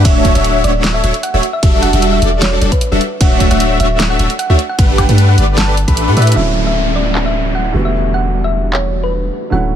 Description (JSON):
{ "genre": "future bass", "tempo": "152 BPM", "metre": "4/4", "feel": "swing 53% on 16ths, half-time", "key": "D major", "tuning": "A4 = 441 Hz", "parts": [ { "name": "thumb-piano-like synth pluck", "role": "melody", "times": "0.0-9.8 s", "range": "B4 to B5", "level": "-20 LUFS", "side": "equal", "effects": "chorus, sidechain pumping, ping-pong delay" }, { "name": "big bright polysynth", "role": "riff", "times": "0.0-6.3 s", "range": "G3 to F#5", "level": "-15 LUFS", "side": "equal", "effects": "wide subtle chorus, sidechain pumping" }, { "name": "long sustained 808-style bass", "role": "bass", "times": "0.0-9.8 s", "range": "D1 to A2", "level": "-14 LUFS", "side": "equal", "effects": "sidechain pumping" }, { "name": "electronic kick drum", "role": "drums", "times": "0.0-6.0 s", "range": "none", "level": "-12 LUFS", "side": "equal", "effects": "none" }, { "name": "pop drum kit", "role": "drums", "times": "0.1-8.8 s", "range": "handclaps, hi-hat, ride cymbal, snare drum, woodblock", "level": "-19 LUFS", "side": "equal", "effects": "low-pass filter on snare, low-pass filter on hats, low-pass filter on cymbals, low-pass filter on perc" }, { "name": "felt-muted upright piano", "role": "accompaniment", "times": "6.3-9.8 s", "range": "D3 to F#4", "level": "-21 LUFS", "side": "right 4 dB", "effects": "sidechain pumping, ping-pong delay" }, { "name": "airy breathy pad", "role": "sustained chords", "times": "6.4-9.8 s", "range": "D3 to F#4", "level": "-25 LUFS", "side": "left 1 dB", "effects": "chorus, sidechain pumping" }, { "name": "downlifter", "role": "sound effects", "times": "6.4-9.5 s", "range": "none", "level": "-21 LUFS", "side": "left 1 dB", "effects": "none" } ], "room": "little or no reverb", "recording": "none", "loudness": "-10 LUFS", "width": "side -9 dB against mid", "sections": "0.0-6.4 A section; 6.4-9.8 B section", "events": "drop 0.0-6.4; drum fill 6.2; filter sweep on analog synth pad 6.4-9.8", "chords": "0.0 Dmaj9; 1.4 Em11; 3.2 Dmaj9; 4.8 Gmaj9; 5.6 A9sus4; 6.4 Dmaj9; 7.7 Em11" }